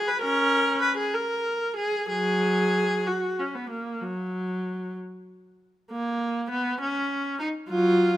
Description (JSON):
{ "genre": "classical, baroque-style suite movement for unaccompanied viola", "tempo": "60-69 BPM (dotted quarters)", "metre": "12/8", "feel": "rubato", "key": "F# major", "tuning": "A4 = 440 Hz", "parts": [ { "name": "clear viola", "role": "solo", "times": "0.0-8.2 s", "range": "F#3 to B4", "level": "-24 LUFS", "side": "equal", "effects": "none" } ], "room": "moderate recital hall reverb, RT60 1.6 s", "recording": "close, detailed microphones", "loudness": "-24 LUFS", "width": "side -13 dB against mid", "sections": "0.0-5.9 A section; 5.9-8.2 B section", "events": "none", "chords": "none" }